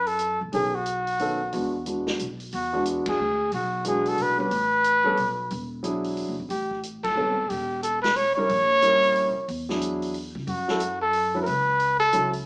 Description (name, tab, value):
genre	jazz, small-group swing and bop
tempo	181 BPM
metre	3/4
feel	swing 62% on 8ths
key	E mixolydian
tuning	A4 = 435 Hz
part	breathy trumpet	melody	0.0-12.3 s	F#4 to C#5	-22 LUFS	equal	none
part	upright bass	bass	0.0-12.4 s	E1 to C#3	-35 LUFS	equal	none
part	vintage drum kit	drums	0.1-12.4 s	hi-hat, kick drum, ride cymbal, snare drum	-36 LUFS	equal	none
part	warm grand piano	accompaniment	0.5-12.3 s	D#3 to B4	-28 LUFS	equal	none
room	wet studio reverb, RT60 0.8 s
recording	heard from further back in the room, small speaker sound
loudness	-22 LUFS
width	side -26 dB against mid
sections	0.0-2.5 A section; 2.5-12.5 A section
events	band accent 3.0, 7.0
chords	0.0 F#m; 0.5 B9; 1.5 E9; 2.2 N.C.; 2.5 E9; 4.5 A7sus2; 5.5 E9; 6.5 A7; 8.5 A#dim7; 9.5 E9; 10.5 F#m7